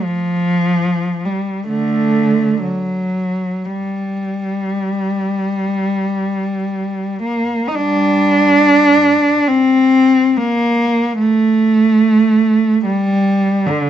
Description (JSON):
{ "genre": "classical, free, expressive piece for unaccompanied cello", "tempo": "48-75 BPM", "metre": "4/4", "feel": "rubato", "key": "G minor", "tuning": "A4 = 440 Hz", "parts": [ { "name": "warm cello", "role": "solo", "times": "0.0-13.9 s", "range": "D3 to Eb4", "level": "-13 LUFS", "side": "right 1 dB", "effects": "none" } ], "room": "light reverb", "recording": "dark, warm production, nothing above 7.6 kHz", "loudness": "-13 LUFS", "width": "side -10 dB against mid", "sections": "0.0-7.8 A section; 7.8-13.9 B section", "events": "none", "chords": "none", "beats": "| 0.05 0.85 1.70 2.64 | 3.67 4.71 5.71 6.68 | 7.76 8.64 9.48 10.36 | 11.20 12.01 12.85 13.67" }